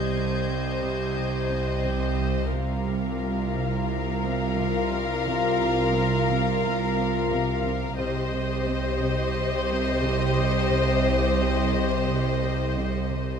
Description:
cinematic, suspense film score; 88 BPM; 4/4; straight; C minor; A4 = 439 Hz
warm studio violin section; melody; 0.0-13.4 s; Eb5 to F5; -32 LUFS; left 4 dB
rich studio violin section; second line; 0.0-13.4 s; Bb4 to C5; -29 LUFS; left 3 dB
rich symphonic viola section; accompaniment; 0.0-13.4 s; F4 to G4; -32 LUFS; equal
warm symphonic cello section; bass; 0.0-13.4 s; C3; -32 LUFS; right 3 dB
warm symphonic double bass section; bass; 0.0-13.4 s; C2; -30 LUFS; right 2 dB
bowed-like drone; drone; 0.0-13.4 s; C2; -30 LUFS; right 3 dB; built-in reverb
warm chamber violin section; texture; 0.0-2.1 s; G6 to Ab6; -40 LUFS; left 6 dB
warm studio cello section; riff; 0.1-13.3 s; C3 to C4; -35 LUFS; right 1 dB
moderate scoring stage reverb, RT60 1.5 s; -22 LUFS; side -7 dB against mid
0.0-13.4 A section
0.0 Cm; 2.5 Bbsus2/C; 8.0 Cm
0.48 1.16 1.84 | 2.53 3.21 3.89 4.57 | 5.25 5.93 6.62 7.30 | 7.98 8.66 9.34 10.03 | 10.71 11.39 12.07 12.75

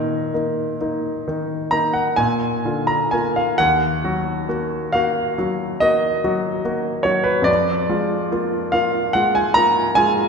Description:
classical, romantic nocturne for solo piano; 41-51 BPM (dotted quarters); 9/8; rubato; Eb minor; A4 = 443 Hz
clear grand piano; solo; 0.0-10.3 s; Eb2 to Bb5; -17 LUFS; equal
wet concert hall reverb, RT60 2.0 s; recorded in a church or concert hall; -17 LUFS; side -5 dB against mid
0.0-10.3 A section
0.0 Bbsus4; 2.2 Bb; 3.6 Ebm; 7.5 Bb7/F
0.81 2.18 | 3.59 4.94 6.25 | 7.47 8.74 9.98

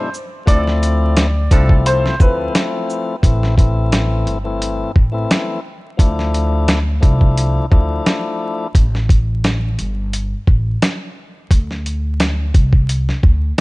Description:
hip hop, boom-bap hip-hop; 87 BPM; 4/4; swing 55% on 16ths; A minor; A4 = 442 Hz
warm upright piano; melody; 0.0-2.5 s; B4 to D5; -22 LUFS; left 1 dB; high-pass filter, low-pass filter, analog delay
tonewheel organ; accompaniment; 0.0-8.7 s; E3 to E4; -22 LUFS; left 3 dB; overdrive, high-pass filter, low-pass filter
dusty soul sampler-style drum kit; drums; 0.1-13.6 s; hi-hat, kick drum, shaker, snare drum; -14 LUFS; equal
warm horn section; stabs; 0.5-1.7 s; F3 to A4; -30 LUFS; right 3 dB; high-pass filter, low-pass filter, analog delay
upright bass; bass; 0.5-13.5 s; G1 to D2; -17 LUFS; equal
studio reverb; vinyl crackle, nothing above 10.5 kHz; -14 LUFS; side -22 dB against mid
0.0-3.2 A section; 3.2-13.6 B section
0.5 Dm7; 3.2 Am; 6.0 Dmadd9; 8.7 Gsus2; 11.5 Csus2
| 0.47 1.16 1.85 2.54 | 3.23 3.92 4.61 5.30 | 5.99 6.68 7.37 8.06 | 8.75 9.44 10.13 10.82 | 11.51 12.20 12.88 13.57

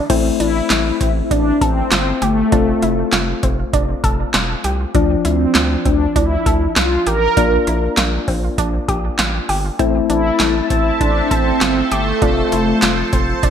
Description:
synth-pop; 99 BPM; 4/4; straight; A4 = 440 Hz
sweeping resonant pad; sustained chords; 0.0-0.1, 9.8-13.5 s; F3 to A5; -22 LUFS; right 1 dB; chorus
analog pluck; arpeggios; 0.0-13.5 s; C4 to A4; -24 LUFS; right 3 dB; chorus, digital delay
soft electric-piano-like synth keys; accompaniment; 0.1-13.5 s; F3 to F4; -22 LUFS; left 8 dB; chorus
round analog bass; bass; 0.1-13.5 s; E1 to D2; -21 LUFS; equal
electro analog drum machine; drums; 0.1-13.5 s; crash cymbal, handclaps, hi-hat, kick drum, snare drum; -19 LUFS; equal; gated reverb
mellow synth brass; melody; 0.4-13.5 s; A3 to Bb4; -19 LUFS; equal; chorus
moderate plate reverb, RT60 2.0 s; bright 1980s-style digital production; -14 LUFS; side -8 dB against mid
0.1-13.5 A section
0.1 Am; 2.5 F; 4.9 Dm; 7.4 Bb; 9.8 Am; 12.2 F
| 0.10 0.70 1.31 1.92 | 2.52 3.13 3.73 4.34 | 4.95 5.55 6.16 6.76 | 7.37 7.98 8.58 9.19 | 9.79 10.40 11.01 11.61 | 12.22 12.82 13.43

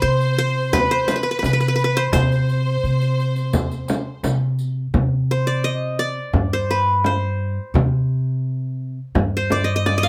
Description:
Arabic maqam ensemble; 86 BPM; 4/4; straight; C maqam nahawand; A4 = 439 Hz
qanun; melody; 0.0-10.1 s; B4 to F5; -24 LUFS; equal
bright studio violin section; second line; 0.0-4.2 s; B4 to C5; -29 LUFS; equal
upright bass; bass; 0.0-10.1 s; G2 to C3; -23 LUFS; equal
riq; percussion; 0.2-4.7 s; -36 LUFS; equal
frame drum; percussion; 0.7-10.0 s; -24 LUFS; equal
light reverb; -20 LUFS; mono
0.0-4.9 A section; 4.9-10.1 B section
0.03 0.73 1.43 | 2.13 2.84 3.54 4.24 | 4.94 5.64 6.35 7.05 | 7.75 8.45 9.15 9.86

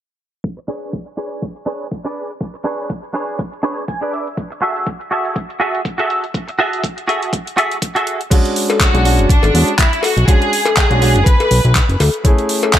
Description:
nu-disco, nu disco; 122 BPM; 4/4; swing 55% on 16ths; B dorian; A4 = 439 Hz
electronic kick drum; drums; 0.4-12.8 s; -15 LUFS; equal; overdrive, high-pass filter on kick, high-pass filter on room
pop drum kit; drums; 0.4-12.8 s; crash cymbal, handclaps, hi-hat; -20 LUFS; equal; overdrive
direct-recorded clean electric guitar; riff; 0.6-8.2 s; D4 to G#5; -19 LUFS; right 1 dB; ensemble chorus, low-pass filter, dub echo
warm concert grand piano; accompaniment; 8.3-12.8 s; G#3 to G#4; -19 LUFS; right 1 dB
cowbell; percussion; 8.7-12.7 s; -19 LUFS; left 5 dB
clear studio violin section; melody; 8.8-12.8 s; D4 to B4; -18 LUFS; equal; dub echo
fat analog bass; bass; 8.9-12.1 s; F#1 to E2; -13 LUFS; equal; tube saturation
digital ambience; low-pass filter; -14 LUFS; side -11 dB against mid
0.4-8.3 A section; 8.3-12.8 B section
filter sweep on clean electric guitar 0.4-8.3; filter sweep 0.4-8.3; clean electric guitar fill 3.6-4.4
0.4 Bm69; 4.4 F#m9; 8.3 Bm69; 12.2 F#m9 (rootless)
| 0.45 0.94 1.43 1.92 | 2.41 2.90 3.40 3.89 | 4.38 4.87 5.36 5.86 | 6.35 6.84 7.33 7.82 | 8.31 8.80 9.30 9.79 | 10.28 10.77 11.26 11.76 | 12.25 12.74

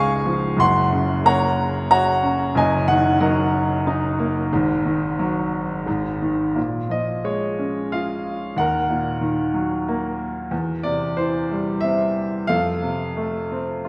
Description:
classical, lyrical solo piano; 91 BPM; 3/4; rubato; Bb minor from 6.6 s; A4 = 440 Hz
bright grand piano; solo; 0.0-13.9 s; Gb1 to Db6; -21 LUFS; equal
wet concert hall reverb, RT60 1.9 s; recorded in a church or concert hall; -21 LUFS; mono
0.0-6.6 A section; 6.6-13.9 B section
0.0 Dbadd9; 0.6 Gb; 2.6 Ebm/Gb; 4.5 Ab5; 6.6 Bbm7; 8.6 Ebm; 10.5 C/E; 12.5 F
| 0.59 1.25 1.91 | 2.56 3.21 3.86 | 4.52 5.18 5.87 | 6.56 7.25 7.92 | 8.57 9.22 9.87 | 10.52 11.18 11.83 | 12.49 13.17 13.86

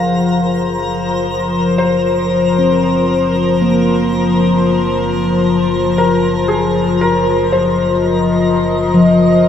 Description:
ambient; 58 BPM; 4/4; straight; Gb lydian; A4 = 445 Hz
felt-muted upright piano; melody; 0.0-9.5 s; Ab4 to F5; -20 LUFS; equal; tape echo
evolving wavetable pad; sustained chords; 0.0-9.5 s; F3 to Eb5; -14 LUFS; left 2 dB; chorus, built-in reverb
handpan; arpeggios; 0.0-9.5 s; F3 to C4; -18 LUFS; equal; tape echo
warm sub bass; bass; 0.0-9.5 s; Gb1; -25 LUFS; left 1 dB
twinkling granular texture; texture; 0.0-9.5 s; Bb4 to Bb5; -25 LUFS; equal; built-in reverb
wet cathedral reverb, RT60 5.3 s; cassette tape; -12 LUFS; side -8 dB against mid
0.0-9.5 A section
0.0 Gb69
0.80 | 1.83 2.86 3.90 4.93 | 5.97 7.00 8.04 9.07

